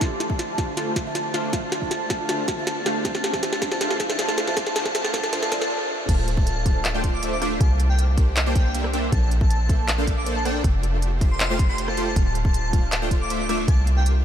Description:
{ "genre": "future bass", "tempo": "158 BPM", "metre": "4/4", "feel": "half-time", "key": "D minor", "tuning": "A4 = 439 Hz", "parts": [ { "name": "airy dreamy lead", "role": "melody", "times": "0.0-14.1 s", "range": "G5 to D6", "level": "-30 LUFS", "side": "equal", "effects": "chorus, sidechain pumping, analog delay" }, { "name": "glassy digital keys", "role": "accompaniment", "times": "0.0-5.6 s", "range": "D3 to E5", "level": "-34 LUFS", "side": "right 2 dB", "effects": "chorus, sidechain pumping, ping-pong delay" }, { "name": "supersaw stab", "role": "riff", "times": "0.0-14.2 s", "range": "A3 to G5", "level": "-28 LUFS", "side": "equal", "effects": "ensemble chorus, sidechain pumping, low-pass filter" }, { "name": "electronic kick drum", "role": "drums", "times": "0.0-13.8 s", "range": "none", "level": "-22 LUFS", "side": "equal", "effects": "none" }, { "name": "trap drum kit", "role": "drums", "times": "0.0-14.1 s", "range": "crash cymbal, handclaps, hi-hat, rim click, snare drum", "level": "-27 LUFS", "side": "equal", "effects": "none" }, { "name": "riser and swell", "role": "sound effects", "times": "2.6-6.1 s", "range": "none", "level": "-36 LUFS", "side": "right 1 dB", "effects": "none" }, { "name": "warm 808-style bass", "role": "bass", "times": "6.1-14.2 s", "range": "D1 to C2", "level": "-23 LUFS", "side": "equal", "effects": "sidechain pumping" } ], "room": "moderate huge ambient reverb, RT60 7.8 s", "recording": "dreamy mix soaked in reverb, high-pass filter", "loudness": "-20 LUFS", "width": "side -9 dB against mid", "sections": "0.0-6.1 A section; 6.1-14.2 B section", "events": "build-up 0.0-6.1; drum fill 0.0-5.7; filter sweep on supersaw synth 0.0-6.1; filter sweep on digital synth lead 0.0-6.1; filter sweep 0.0-6.1; riser 2.6-5.7; swell 5.3-6.1; stop 5.7-6.1; drop 6.1-14.2", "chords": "0.0 Dm9; 6.1 Dm7; 7.6 C9sus4; 9.1 Bbmaj9#11; 10.6 Fmaj9; 12.2 Dm7; 13.7 C9sus4" }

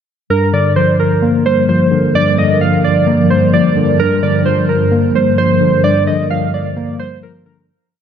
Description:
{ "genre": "hip hop, trap", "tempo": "130 BPM", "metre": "4/4", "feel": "half-time", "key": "G minor", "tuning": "A4 = 441 Hz", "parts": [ { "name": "warbly lo-fi synth keys", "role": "melody", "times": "0.3-7.7 s", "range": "Bb4 to F5", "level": "-15 LUFS", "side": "right 3 dB", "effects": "chorus, low-pass filter, diffuse ambient delay" }, { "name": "mellow tine electric piano", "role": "accompaniment", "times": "0.3-7.7 s", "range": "G2 to Bb3", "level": "-13 LUFS", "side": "left 2 dB", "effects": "medium stereo tremolo, low-pass filter" }, { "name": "granular cloud pad", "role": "sustained chords", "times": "1.6-7.6 s", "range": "G2 to Bb4", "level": "-18 LUFS", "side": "equal", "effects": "built-in reverb, analog chorus" } ], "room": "wet lush hall reverb, RT60 2.0 s", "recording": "dreamy mix soaked in reverb", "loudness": "-10 LUFS", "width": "side -8 dB against mid", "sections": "0.3-7.7 breakdown", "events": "fade-out 5.8-7.7", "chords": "0.3 Gm7" }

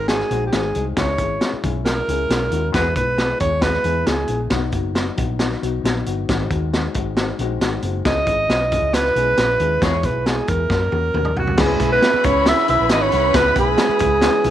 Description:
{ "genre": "uptempo 1960s-style soul", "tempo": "136 BPM", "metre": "4/4", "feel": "straight", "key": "unclear", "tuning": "A4 = 442 Hz", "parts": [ { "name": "breathy alto saxophone", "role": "melody", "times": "0.0-4.4, 8.1-14.5 s", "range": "F#4 to E5", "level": "-19 LUFS", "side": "right 2 dB", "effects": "none" }, { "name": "dark upright piano", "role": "accompaniment", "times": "0.0-14.5 s", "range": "F#3 to C#5", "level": "-26 LUFS", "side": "left 10 dB", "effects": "none" }, { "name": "hollow-body short-scale fingered electric bass", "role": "bass", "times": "0.0-14.5 s", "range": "F#1 to F#2", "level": "-24 LUFS", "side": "equal", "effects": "none" }, { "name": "crunchy breakbeat drum kit", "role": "drums", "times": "0.1-14.5 s", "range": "crash cymbal, hi-hat, kick drum, snare drum, toms", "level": "-22 LUFS", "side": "equal", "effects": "none" }, { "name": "clear horn section", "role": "second line", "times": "2.7-2.9, 9.8-14.5 s", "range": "E3 to G#4", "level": "-27 LUFS", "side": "left 13 dB", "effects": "none" }, { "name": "vibraphone with soft mallets", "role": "second line", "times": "11.3-14.5 s", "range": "F#3 to E4", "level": "-26 LUFS", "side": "right 13 dB", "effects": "none" }, { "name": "warm symphonic violin section", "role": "second line", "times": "11.6-14.5 s", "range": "B4 to B5", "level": "-25 LUFS", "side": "equal", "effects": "none" } ], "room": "light reverb, small room ambience", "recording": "1960s-style stereo with parts hard left and right", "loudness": "-16 LUFS", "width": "side -11 dB against mid", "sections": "0.0-11.6 A section; 11.6-14.5 B section", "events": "band accent 2.7-4.5, 9.8-11.6; drum fill 10.7-11.6", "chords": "0.0 G#7; 1.0 C#m; 2.7 E; 4.5 B; 6.3 G#7; 8.0 C#m; 9.8 E; 10.7 F#; 11.6 C#m7" }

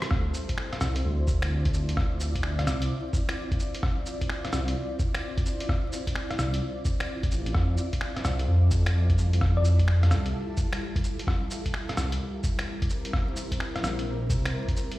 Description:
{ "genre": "future garage", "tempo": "129 BPM", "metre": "4/4", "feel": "swing 64% on 16ths", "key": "D minor", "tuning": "A4 = 442 Hz", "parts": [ { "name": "granular cloud pad", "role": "sustained chords", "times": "0.0-15.0 s", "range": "G3 to D5", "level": "-35 LUFS", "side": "equal", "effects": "built-in reverb, sidechain pumping" }, { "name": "lo-fi sampler-style drum kit", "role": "drums", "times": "0.0-15.0 s", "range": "cabasa, finger snaps, hi-hat, rim click", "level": "-33 LUFS", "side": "equal", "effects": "studio reverb" }, { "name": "dark detuned saw bass", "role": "bass", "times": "0.1-14.5 s", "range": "A1 to F2", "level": "-24 LUFS", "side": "equal", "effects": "sidechain pumping" }, { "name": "electronic kick drum", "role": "drums", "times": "0.1-14.7 s", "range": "none", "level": "-27 LUFS", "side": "equal", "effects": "studio reverb" }, { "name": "thumb-piano-like synth pluck", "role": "melody", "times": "9.6-9.8 s", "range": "D5", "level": "-35 LUFS", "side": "left 4 dB", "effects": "chorus, tape echo" } ], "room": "light reverb", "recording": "played on a big sound system in a bare room, stone room reverb, vinyl crackle", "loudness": "-24 LUFS", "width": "side -17 dB against mid", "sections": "0.1-15.0 A section", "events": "none", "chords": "0.1 Dm9; 7.6 Fmaj9; 11.3 C7" }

